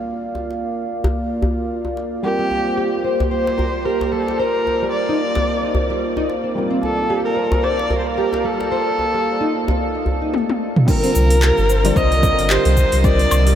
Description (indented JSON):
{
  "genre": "organic downtempo",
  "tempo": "111 BPM",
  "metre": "4/4",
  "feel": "swing 57% on 16ths",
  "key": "unclear",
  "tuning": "A4 = 439 Hz",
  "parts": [
    { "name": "felt-muted upright piano", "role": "accompaniment", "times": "0.0-13.6 s", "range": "D3 to D5", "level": "-27 LUFS", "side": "left 1 dB", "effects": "wide subtle chorus, sidechain pumping, tape echo" },
    { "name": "warm analog pad", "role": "sustained chords", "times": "0.0-13.6 s", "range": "Bb3 to F5", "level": "-24 LUFS", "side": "right 1 dB", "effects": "chorus, sidechain pumping" },
    { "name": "djembe", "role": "percussion", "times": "0.3-10.2 s", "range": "none", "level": "-24 LUFS", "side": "equal", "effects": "none" },
    { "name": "rich kamancheh", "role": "melody", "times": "2.2-13.6 s", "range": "G4 to Eb5", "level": "-21 LUFS", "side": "equal", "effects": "tape echo" },
    { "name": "nylon-string guitar", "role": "arpeggios", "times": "2.4-13.6 s", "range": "G3 to C5", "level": "-24 LUFS", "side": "equal", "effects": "analog chorus, tape echo" },
    { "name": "deep house drum kit", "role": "drums", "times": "10.3-13.6 s", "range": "cabasa, crash cymbal, handclaps, hi-hat, toms, woodblock", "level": "-22 LUFS", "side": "equal", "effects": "overdrive, studio reverb" },
    { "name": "electronic kick drum", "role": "drums", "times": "10.9-13.2 s", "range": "none", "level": "-18 LUFS", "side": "equal", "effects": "overdrive, studio reverb" },
    { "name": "warm sub bass", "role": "bass", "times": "11.2-13.6 s", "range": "G1 to C2", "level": "-16 LUFS", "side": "equal", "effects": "sidechain pumping" }
  ],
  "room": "wet huge ambient reverb, RT60 8.3 s",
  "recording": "dreamy mix soaked in reverb",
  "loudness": "-16 LUFS",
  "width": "side -10 dB against mid",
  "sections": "0.0-10.9 A section; 10.9-13.6 B section",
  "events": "drum fill 10.3-10.9",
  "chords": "0.0 C9sus4; 10.9 Cm11",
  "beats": "| 0.07 0.61 1.15 1.69 | 2.23 2.77 3.31 3.85 | 4.39 4.93 5.47 6.02 | 6.56 7.10 7.64 8.18 | 8.72 9.26 9.80 10.34 | 10.88 11.42 11.96 12.50 | 13.04"
}